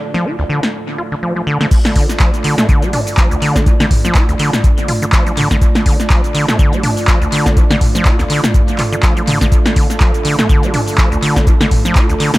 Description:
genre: acid house.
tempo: 123 BPM.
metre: 4/4.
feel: swing 56% on 16ths.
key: D minor.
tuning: A4 = 441 Hz.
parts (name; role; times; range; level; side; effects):
dark analog pad; sustained chords; 0.0-12.4 s; A3 to D5; -22 LUFS; right 2 dB; chorus, sidechain pumping.
deep dark ambient pad; texture; 0.0-1.7 s; D4 to F5; -32 LUFS; right 2 dB; chorus, built-in reverb, sidechain pumping.
acid bass, saw; riff; 0.1-12.3 s; D2 to F4; -17 LUFS; equal; tube saturation, sidechain pumping, dub echo.
punchy analog drum machine; drums; 0.1-12.4 s; crash cymbal, handclaps, hi-hat, shaker, snare drum, toms; -17 LUFS; equal; tape echo.
electronic kick drum; drums; 1.7-12.1 s; none; -12 LUFS; equal; none.
room: digital ambience.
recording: echo-heavy mix.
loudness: -11 LUFS.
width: side -18 dB against mid.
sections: 0.0-1.7 A section; 1.7-12.4 B section.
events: drop 1.7-12.4.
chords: 0.0 Dm.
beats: 0.25 0.74 1.23 | 1.71 2.20 2.69 3.18 | 3.67 4.15 4.64 5.13 | 5.62 6.10 6.59 7.08 | 7.57 8.05 8.54 9.03 | 9.52 10.01 10.49 10.98 | 11.47 11.96.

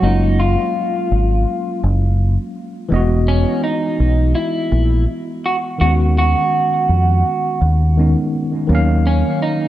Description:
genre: lo-fi hip hop.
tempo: 83 BPM.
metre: 4/4.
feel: swing 57% on 16ths.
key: unclear.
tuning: A4 = 440 Hz.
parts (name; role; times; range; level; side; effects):
electric guitar through a small old amp; melody; 0.0-9.7 s; Db4 to Gb4; -20 LUFS; right 1 dB; low-pass filter, analog delay.
barky tine electric piano; accompaniment; 0.0-9.7 s; D#3 to F5; -20 LUFS; equal; overdrive, fast stereo tremolo, cassette tape, low-pass filter, analog delay.
deep dub fingered electric bass; bass; 0.0-9.2 s; E1 to F2; -14 LUFS; equal; none.
room: light reverb, digital ambience.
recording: echo-heavy mix, cassette tape.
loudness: -14 LUFS.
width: side -13 dB against mid.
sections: 0.0-9.7 A section.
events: none.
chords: 0.0 Gbmaj7; 2.9 Emaj7; 5.8 B69/D#; 8.7 Ebm9.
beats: | 0.02 0.74 1.46 2.19 | 2.91 3.63 4.36 5.08 | 5.80 6.53 7.25 7.97 | 8.69 9.42.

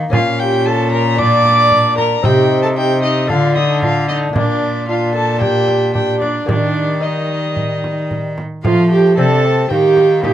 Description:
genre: classical, renaissance-style consort dance.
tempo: 113 BPM.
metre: 4/4.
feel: straight.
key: unclear.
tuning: A4 = 440 Hz.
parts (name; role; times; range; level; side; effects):
lute; accompaniment; 0.0-10.3 s; Bb2 to G4; -23 LUFS; left 5 dB; none.
mellow bassoon; accompaniment; 0.0-10.3 s; G3 to Eb4; -21 LUFS; left 3 dB; none.
rich cello; bass; 0.0-10.3 s; Bb2 to F3; -18 LUFS; right 1 dB; none.
dark violin; melody; 0.1-10.3 s; D5 to D6; -19 LUFS; left 2 dB; none.
warm viola; second line; 0.1-10.3 s; D4 to D5; -17 LUFS; right 4 dB; none.
frame drum; percussion; 0.1-10.3 s; none; -22 LUFS; right 2 dB; none.
room: little or no reverb.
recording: close, detailed microphones.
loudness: -12 LUFS.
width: side -11 dB against mid.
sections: 0.0-8.6 A section; 8.6-10.3 B section.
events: none.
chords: 0.1 Bbm; 1.2 Bb; 2.2 Cm; 3.3 D5; 4.4 Bb; 6.5 Eb; 8.6 F; 9.7 Eb.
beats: | 0.13 0.66 1.19 1.71 | 2.24 2.77 3.30 3.83 | 4.36 4.88 5.42 5.95 | 6.49 7.03 7.57 8.11 | 8.64 9.18 9.71 10.24.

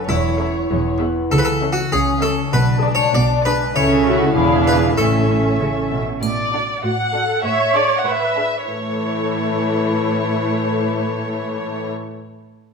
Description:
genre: cinematic, playful, whimsical film cue.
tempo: 98 BPM.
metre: 2/4.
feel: straight.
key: A major.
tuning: A4 = 440 Hz.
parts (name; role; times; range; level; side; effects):
harpsichord; melody; 0.0-5.6 s; E4 to D5; -22 LUFS; left 1 dB; none.
muted studio violin section; second line; 0.0-11.9 s; C#4 to C#5; -24 LUFS; left 4 dB; none.
concert harp; arpeggios; 0.0-7.5 s; E2 to D5; -22 LUFS; left 4 dB; none.
muted studio cello section; bass; 0.1-11.9 s; E2 to C#3; -24 LUFS; right 3 dB; none.
muted studio double bass section; bass; 0.1-6.0 s; E1 to C#2; -24 LUFS; right 3 dB; none.
muted chamber violin section; melody; 0.4-11.9 s; C#5 to F#5; -23 LUFS; left 1 dB; none.
muted studio viola section; accompaniment; 0.4-11.9 s; E3 to C#5; -22 LUFS; right 2 dB; none.
triangle; percussion; 6.2-7.4 s; none; -34 LUFS; right 1 dB; none.
room: wet recital hall reverb, RT60 1.4 s.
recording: minimal, uncompressed stereo recording.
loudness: -16 LUFS.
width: side -5 dB against mid.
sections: 0.0-6.2 A section; 6.2-8.7 B section; 8.7-11.1 C section.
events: none.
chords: 0.1 A/E; 0.7 E; 1.3 A/C#; 2.5 G#dim/B; 3.8 A/C#; 4.4 E7b9; 5.0 A; 6.2 D/A; 7.4 E7/A; 8.7 A.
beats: | 0.08 0.70 | 1.31 1.92 | 2.53 3.15 | 3.75 4.37 | 4.98 5.60 | 6.22 6.83 | 7.44 8.05 | 8.68 9.29 | 9.90 10.51.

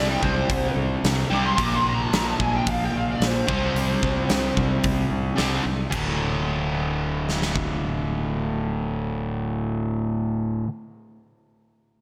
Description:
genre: hard rock.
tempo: 110 BPM.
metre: 4/4.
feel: straight.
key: D minor.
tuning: A4 = 444 Hz.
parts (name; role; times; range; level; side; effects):
lead guitar through a small cranked amp; melody; 0.0-4.8 s; C5 to D6; -29 LUFS; equal; overdrive, ensemble chorus, delay.
overdriven electric guitar; riff; 0.0-10.7 s; D2 to C4; -27 LUFS; equal; none.
fuzz fingered electric bass; bass; 0.0-10.6 s; D1 to C2; -31 LUFS; equal; overdrive.
huge arena drum kit; drums; 0.2-7.7 s; crash cymbal, hi-hat, kick drum, snare drum; -30 LUFS; equal; gated reverb.
room: moderate plate reverb, RT60 3.1 s.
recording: bright 1980s-style digital production.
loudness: -24 LUFS.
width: mono.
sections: 0.0-5.9 A section; 5.9-10.3 B section.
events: lead electric guitar solo 0.0-5.9.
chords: 0.0 C5; 1.6 Bb5; 3.5 C5; 5.9 D5.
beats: 0.51 1.05 | 1.59 2.13 2.67 3.22 | 3.76 4.30 4.84 5.39 | 5.93 6.47 7.01 7.56 | 8.10 8.64 9.19 9.73.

